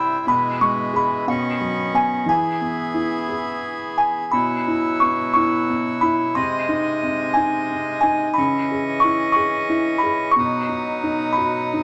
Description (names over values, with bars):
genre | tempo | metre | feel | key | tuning
children's music, lullaby | 60 BPM (dotted quarters) | 6/8 | rubato | unclear | A4 = 440 Hz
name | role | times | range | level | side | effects
music box | melody | 0.0-11.8 s | F#5 to C#6 | -23 LUFS | equal | none
felt-muted upright piano | accompaniment | 0.0-11.8 s | B2 to G#4 | -27 LUFS | equal | none
accordion | sustained chords | 0.0-11.8 s | B2 to D#5 | -27 LUFS | equal | none
room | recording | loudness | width
moderate studio reverb, RT60 0.8 s | none | -21 LUFS | mono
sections
0.0-4.3 A section; 4.3-11.8 B section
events
none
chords
0.3 E/B; 1.3 Badd9; 2.3 E; 4.3 Bsus4; 6.4 G#/B#; 8.4 C#madd9; 10.4 B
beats
| 0.28 1.28 | 2.28 3.30 | 4.33 5.36 | 6.37 7.37 | 8.37 9.36 | 10.36 11.37